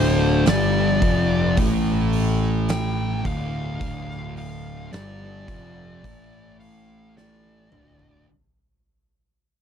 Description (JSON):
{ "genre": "stoner and doom metal", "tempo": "54 BPM", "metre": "4/4", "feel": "straight", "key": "D minor", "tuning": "A4 = 440 Hz", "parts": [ { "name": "fuzz lead guitar", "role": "melody", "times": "0.0-8.2 s", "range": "C5 to G5", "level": "-28 LUFS", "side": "left 1 dB", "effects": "distortion, slapback echo" }, { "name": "thick fuzz guitar", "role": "riff", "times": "0.0-8.3 s", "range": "D2 to A3", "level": "-26 LUFS", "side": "left 10 dB", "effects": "distortion" }, { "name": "thick fuzz guitar", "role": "riff", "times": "0.0-8.3 s", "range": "D2 to A3", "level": "-27 LUFS", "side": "right 14 dB", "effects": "distortion" }, { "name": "fuzz picked electric bass", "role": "bass", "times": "0.0-8.2 s", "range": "D1 to A1", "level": "-25 LUFS", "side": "equal", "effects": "overdrive" }, { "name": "oversized low-tuned drum kit", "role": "drums", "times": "0.5-8.2 s", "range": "hi-hat, kick drum, snare drum, toms", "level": "-26 LUFS", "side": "right 1 dB", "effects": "none" } ], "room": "little or no reverb", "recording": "none", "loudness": "-19 LUFS", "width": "side -8 dB against mid", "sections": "0.0-8.3 A section", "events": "fade-out 0.0-8.3; lead electric guitar solo 0.0-8.3; drum fill 7.2-8.3", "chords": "0.0 Dm" }